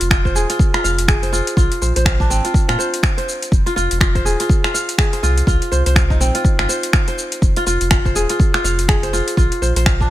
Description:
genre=afro house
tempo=123 BPM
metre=4/4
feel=swing 59% on 16ths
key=F dorian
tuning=A4 = 441 Hz
part: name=kora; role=arpeggios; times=0.0-10.1 s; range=C4 to F5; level=-20 LUFS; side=equal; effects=sidechain pumping, tape echo
part: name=warm sub bass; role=bass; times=0.0-10.1 s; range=Eb1 to Bb2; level=-19 LUFS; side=equal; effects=tube saturation, sidechain pumping
part: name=afro-pop drum kit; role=drums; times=0.0-10.1 s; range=finger snaps, hi-hat, shaker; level=-21 LUFS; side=equal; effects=overdrive
part: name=electronic kick drum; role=drums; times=0.1-10.1 s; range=none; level=-16 LUFS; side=equal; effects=none
room=digital ambience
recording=none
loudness=-14 LUFS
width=side -14 dB against mid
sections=0.0-10.1 A section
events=none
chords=0.0 Fm; 1.6 Bb7; 3.5 Fm; 5.5 Cm; 7.4 Fm7; 9.4 Bb7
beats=0.11 0.59 1.08 | 1.57 2.06 2.54 3.03 | 3.52 4.01 4.50 4.98 | 5.47 5.96 6.45 6.94 | 7.42 7.91 8.40 8.89 | 9.38 9.86

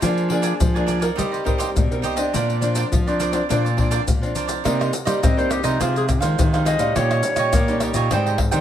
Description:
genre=samba and choro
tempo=104 BPM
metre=4/4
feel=straight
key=C minor from 4.7 s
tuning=A4 = 441 Hz
part: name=cavaquinho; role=accompaniment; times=0.0-8.6 s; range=D4 to Ab5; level=-26 LUFS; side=right 7 dB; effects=none
part: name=nylon-string guitar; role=accompaniment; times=0.0-8.6 s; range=G2 to Bb4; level=-25 LUFS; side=left 1 dB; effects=none
part: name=nylon-string guitar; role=bass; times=0.0-8.6 s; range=Ab2 to C4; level=-23 LUFS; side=equal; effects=none
part: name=maracas, surdo, pandeiro and tamborim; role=percussion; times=0.0-8.6 s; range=none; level=-22 LUFS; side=left 1 dB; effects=none
part: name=warm clarinet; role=second line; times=5.1-7.8 s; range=Eb4 to Eb5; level=-24 LUFS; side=left 3 dB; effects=none
room=light reverb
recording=none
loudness=-18 LUFS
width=side -10 dB against mid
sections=0.0-4.7 A section; 4.7-8.6 B section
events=clarinet solo 4.7-8.6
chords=0.0 Bb7/F; 1.2 Eb6/G; 2.3 Bbadd9; 4.7 Cm7; 5.8 Ab6/C; 7.0 Eb7/Bb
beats=| 0.03 0.60 1.18 1.76 | 2.34 2.92 3.50 4.07 | 4.65 5.23 5.81 6.38 | 6.96 7.54 8.12

